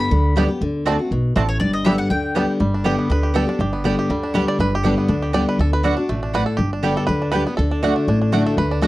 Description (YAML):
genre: bluegrass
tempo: 241 BPM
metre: 4/4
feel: straight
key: G major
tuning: A4 = 438 Hz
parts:
  - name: mandolin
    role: melody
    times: 0.0-2.5 s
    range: C#5 to B5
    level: -25 LUFS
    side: left 2 dB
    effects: none
  - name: picked steel-string acoustic guitar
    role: accompaniment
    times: 0.0-8.9 s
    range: G2 to G4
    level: -20 LUFS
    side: left 2 dB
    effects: none
  - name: upright bass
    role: bass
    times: 0.1-8.9 s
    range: G1 to D2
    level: -22 LUFS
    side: equal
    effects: none
  - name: bluegrass banjo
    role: melody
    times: 0.4-8.9 s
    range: G3 to D5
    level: -25 LUFS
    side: right 3 dB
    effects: none
  - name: mandolin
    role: stabs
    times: 0.4-8.9 s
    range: A3 to A5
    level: -25 LUFS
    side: right 6 dB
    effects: none
room: light reverb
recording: dry, close 1970s-style studio recording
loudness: -17 LUFS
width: side -17 dB against mid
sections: 0.0-2.6 A section; 2.6-8.9 B section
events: five-string banjo solo 2.6-8.9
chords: 0.0 G; 0.6 D7; 1.6 G; 5.6 D; 6.6 G; 7.6 D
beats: 0.11 0.36 | 0.61 0.86 1.11 1.36 | 1.61 1.85 2.10 2.35 | 2.60 2.85 3.10 3.35 | 3.60 3.85 4.10 4.35 | 4.59 4.84 5.09 5.34 | 5.59 5.84 6.09 6.34 | 6.59 6.84 7.09 7.33 | 7.58 7.83 8.08 8.33 | 8.58 8.83